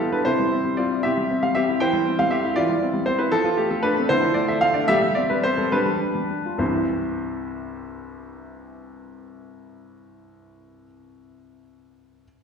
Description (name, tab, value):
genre	classical-period piano sonatina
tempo	66-80 BPM (dotted quarters)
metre	6/8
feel	rubato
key	C major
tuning	A4 = 440 Hz
part	clear grand piano	solo	0.0-12.3 s	C2 to G5	-20 LUFS	equal	none
room	wet recital hall reverb, RT60 1.4 s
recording	heard from further back in the room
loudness	-19 LUFS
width	side -6 dB against mid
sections	0.0-6.6 A section; 6.6-10.0 B section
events	slowing down 2.6-6.6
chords	0.3 C; 1.8 C/E; 3.3 F; 4.1 Dm; 4.9 C5/G; 5.7 G7; 6.6 C